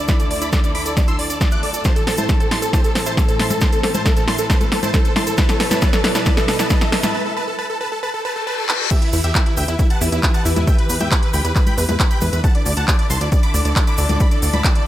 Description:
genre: uplifting trance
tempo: 136 BPM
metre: 4/4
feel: straight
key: E minor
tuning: A4 = 440 Hz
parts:
  - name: big supersaw lead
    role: melody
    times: 0.0-14.8 s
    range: E4 to F#6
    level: -24 LUFS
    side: equal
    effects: sidechain pumping, low-pass filter, dub echo
  - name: plucky unison lead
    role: second line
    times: 0.0-14.8 s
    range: E4 to F#6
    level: -30 LUFS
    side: right 1 dB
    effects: none
  - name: warm studio string section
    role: sustained chords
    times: 0.0-14.9 s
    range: D2 to B4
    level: -28 LUFS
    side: left 1 dB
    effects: sidechain pumping
  - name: wide unison pluck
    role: arpeggios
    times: 0.0-7.1 s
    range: D4 to A5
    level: -28 LUFS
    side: right 2 dB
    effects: sidechain pumping, dub echo
  - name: riser and reverse cymbal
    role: sound effects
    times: 0.7-8.9 s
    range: none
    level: -30 LUFS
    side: left 2 dB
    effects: none
  - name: electronic kick drum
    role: drums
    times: 0.1-14.7 s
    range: none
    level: -17 LUFS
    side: equal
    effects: studio reverb
  - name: techno drum kit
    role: drums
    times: 0.1-14.8 s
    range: congas, crash cymbal, handclaps, hi-hat, snare drum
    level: -22 LUFS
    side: equal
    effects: studio reverb, sidechain pumping on hats, sidechain pumping on perc, sidechain pumping on cymbals
  - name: egg shaker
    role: percussion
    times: 0.1-14.7 s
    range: none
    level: -32 LUFS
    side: right 3 dB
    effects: none
  - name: plucky analog bass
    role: bass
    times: 9.1-14.6 s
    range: C2 to E2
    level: -19 LUFS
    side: equal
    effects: sidechain pumping
room: light reverb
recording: none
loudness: -15 LUFS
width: side -13 dB against mid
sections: 0.0-8.9 A section; 8.9-14.9 B section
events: build-up 0.0-8.9; drum fill 0.0-7.1, 8.7; filter sweep on synth pluck 0.0-8.9; riser 0.7-7.1; break 7.1-8.9; reverse cymbal 8.3-8.9; drop 8.9-14.9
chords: 0.0 Dsus2; 1.9 Am; 5.4 Bsus4; 8.9 Em; 12.4 Dsus2

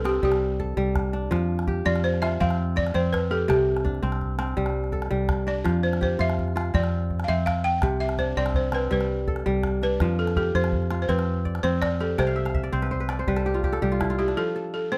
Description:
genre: west african traditional, West African string and xylophone music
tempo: 110 BPM (dotted quarters)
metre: 12/8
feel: straight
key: F lydian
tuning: A4 = 438 Hz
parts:
  - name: balafon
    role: melody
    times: 0.0-15.0 s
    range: G4 to G5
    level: -29 LUFS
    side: equal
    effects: none
  - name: kora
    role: arpeggios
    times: 0.0-15.0 s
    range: C3 to G5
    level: -30 LUFS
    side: equal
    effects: none
  - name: fingered electric bass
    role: bass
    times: 0.0-14.3 s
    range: C2 to F2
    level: -29 LUFS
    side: equal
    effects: none
  - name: calabash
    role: percussion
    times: 0.1-14.3 s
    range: none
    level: -34 LUFS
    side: equal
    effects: none
room: light reverb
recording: close, detailed microphones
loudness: -25 LUFS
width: mono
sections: 0.0-14.4 A section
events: kora fill 12.2-14.4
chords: 0.0 C5; 1.3 F5; 3.5 C5; 5.7 F5; 7.8 C5; 10.0 F5; 12.2 C5; 14.4 F

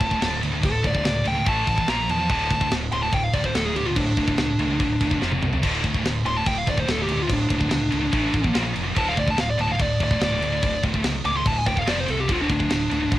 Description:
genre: heavy metal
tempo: 144 BPM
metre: 4/4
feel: straight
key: D minor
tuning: A4 = 440 Hz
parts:
  - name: dark smooth lead guitar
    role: melody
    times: 0.0-13.2 s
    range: D4 to D6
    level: -25 LUFS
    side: equal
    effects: overdrive, cassette tape
  - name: scooped high-gain guitar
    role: riff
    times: 0.0-13.2 s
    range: D2 to Bb3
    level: -25 LUFS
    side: equal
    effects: distortion, cassette tape
  - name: growling fingered electric bass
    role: bass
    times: 0.0-13.2 s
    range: D1 to E2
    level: -29 LUFS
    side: equal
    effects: overdrive
  - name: tight metal drum kit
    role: drums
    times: 0.0-13.2 s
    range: crash cymbal, kick drum, snare drum, toms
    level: -26 LUFS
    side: equal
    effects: cassette tape
room: little or no reverb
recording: home recording on cassette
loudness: -20 LUFS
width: side -14 dB against mid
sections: 0.0-13.2 A section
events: lead electric guitar solo 0.0-13.2; drum fill 5.2-5.6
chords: 0.0 D5; 1.5 A5; 1.9 Bb5; 2.3 D5; 5.2 F5; 5.6 D5; 8.1 A5; 8.5 Bb5; 9.0 D5; 11.9 F5; 12.3 D5

